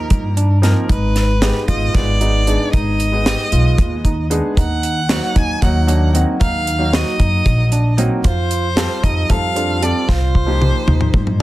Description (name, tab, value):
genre	progressive instrumental, band music in an uneven meter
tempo	228 BPM (eighths)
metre	7/8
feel	straight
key	unclear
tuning	A4 = 440 Hz
part	rich violin	melody	0.0-11.4 s	Bb4 to Ab5	-22 LUFS	equal	none
part	warm concert grand piano	accompaniment	0.0-11.4 s	F3 to Bb4	-23 LUFS	equal	none
part	barky tine electric piano	arpeggios	0.0-11.4 s	C4 to G4	-25 LUFS	right 4 dB	tape echo
part	upright bass	bass	0.0-11.4 s	Ab1 to G2	-17 LUFS	equal	none
part	deep reggae drum kit	drums	0.1-11.4 s	hi-hat, kick drum, snare drum, toms	-18 LUFS	equal	none
room	light reverb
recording	dense, heavily limited modern master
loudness	-14 LUFS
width	side -16 dB against mid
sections	0.0-11.4 A section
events	drum fill 10.1-11.4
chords	0.0 Cm7; 0.9 Abm; 4.6 Ebm; 8.2 F; 10.1 Cm